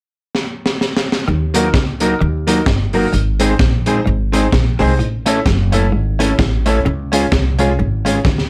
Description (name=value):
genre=ska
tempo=129 BPM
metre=4/4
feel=swing 58% on 8ths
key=unclear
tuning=A4 = 440 Hz
part: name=crunchy breakbeat drum kit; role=drums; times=0.3-8.5 s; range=hi-hat, kick drum, snare drum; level=-20 LUFS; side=equal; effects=slapback echo
part: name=semi-hollow electric guitar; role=riff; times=1.3-8.4 s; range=Gb2 to Eb3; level=-25 LUFS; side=equal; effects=tube saturation, phaser
part: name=upright bass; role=bass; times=1.3-8.5 s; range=Gb1 to Eb2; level=-20 LUFS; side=equal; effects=none
part: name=mellow electric guitar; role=accompaniment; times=1.5-8.2 s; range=Gb3 to A4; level=-20 LUFS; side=equal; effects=none
part: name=clear upright piano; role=stabs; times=1.5-8.2 s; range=Bb3 to C#5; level=-23 LUFS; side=equal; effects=slapback echo
room=light reverb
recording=none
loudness=-16 LUFS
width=mono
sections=0.0-1.3 A section; 1.3-8.5 B section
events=drum fill 0.3-1.3, 8.2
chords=0.0 N.C.; 1.3 Ebm; 3.1 Ab; 5.0 A; 6.9 Db